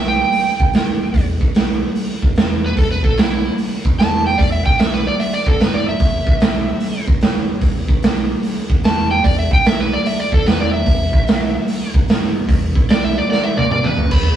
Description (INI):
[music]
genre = blues rock power trio and southern rock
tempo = 148 BPM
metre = 4/4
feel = swing 66% on 8ths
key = E minor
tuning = A4 = 439 Hz
[part]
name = overdriven slide guitar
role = melody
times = 0.0-14.4 s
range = E4 to B5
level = -20 LUFS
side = right 2 dB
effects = none
[part]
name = overdriven fingered electric bass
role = bass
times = 0.0-14.4 s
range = E1 to B1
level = -23 LUFS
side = equal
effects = none
[part]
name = raw garage drum kit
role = drums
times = 0.3-14.2 s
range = crash cymbal, hi-hat, kick drum, snare drum, toms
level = -15 LUFS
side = right 1 dB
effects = none
[sound]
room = light reverb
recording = rough rehearsal-room recording, tube saturation, small room ambience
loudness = -14 LUFS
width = side -10 dB against mid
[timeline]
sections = 0.0-14.1 A section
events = electric slide guitar solo 0.0-14.4; drum fill 13.3-14.1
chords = 0.0 Em